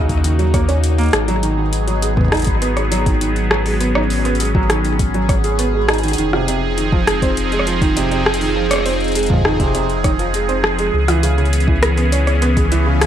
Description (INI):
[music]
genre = IDM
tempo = 101 BPM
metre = 4/4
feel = straight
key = unclear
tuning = A4 = 442 Hz
[part]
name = phased analog pad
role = sustained chords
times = 0.0-13.1 s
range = Db3 to Ab4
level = -20 LUFS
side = right 1 dB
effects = phaser, chorus
[part]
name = felt-muted upright piano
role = arpeggios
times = 0.0-13.1 s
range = C3 to Ab4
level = -21 LUFS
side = right 2 dB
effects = ping-pong delay
[part]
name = warm sub bass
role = bass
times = 0.0-13.1 s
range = F1 to Eb2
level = -19 LUFS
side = equal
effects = none
[part]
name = electro analog drum machine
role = drums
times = 0.1-13.1 s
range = hi-hat, rim click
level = -21 LUFS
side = left 1 dB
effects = ping-pong delay
[part]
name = electronic kick drum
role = drums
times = 0.1-12.7 s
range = none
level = -18 LUFS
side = equal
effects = none
[sound]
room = digital ambience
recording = none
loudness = -14 LUFS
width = side -10 dB against mid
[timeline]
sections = 0.0-13.1 A section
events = none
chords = 0.0 Ebm7; 1.1 Abm7; 6.2 Fm7; 10.9 Dbm7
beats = 0.24 0.83 | 1.43 2.02 2.62 3.21 | 3.81 4.40 4.99 5.59 | 6.18 6.78 7.37 7.96 | 8.56 9.15 9.75 10.34 | 10.94 11.53 12.12 12.72